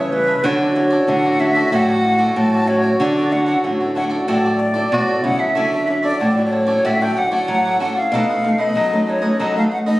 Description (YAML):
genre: samba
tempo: 94 BPM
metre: 4/4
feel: straight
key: D major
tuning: A4 = 440 Hz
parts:
  - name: silver concert flute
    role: melody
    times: 0.0-10.0 s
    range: B4 to A5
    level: -19 LUFS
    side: equal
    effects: plate reverb
  - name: breathy tenor saxophone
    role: second line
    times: 0.0-5.6 s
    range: E4 to F#4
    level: -22 LUFS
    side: right 1 dB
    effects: none
  - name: cavaquinho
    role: accompaniment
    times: 0.0-10.0 s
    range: D#4 to E5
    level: -27 LUFS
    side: right 3 dB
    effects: none
  - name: nylon-string guitar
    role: accompaniment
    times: 0.0-10.0 s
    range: A2 to E4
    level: -22 LUFS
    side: left 1 dB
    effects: none
  - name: nylon-string guitar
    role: bass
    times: 0.0-9.7 s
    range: A2 to F#3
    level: -20 LUFS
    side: equal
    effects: none
room: moderate large studio reverb, RT60 0.9 s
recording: recorded on a phone in the room, studio reverb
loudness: -15 LUFS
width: side -18 dB against mid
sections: 0.0-5.6 A section; 5.6-10.0 B section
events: none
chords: 0.5 Dmaj9; 8.1 B9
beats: | 0.45 1.09 1.73 2.37 | 3.01 3.65 4.29 4.93 | 5.57 6.21 6.84 7.48 | 8.12 8.76 9.40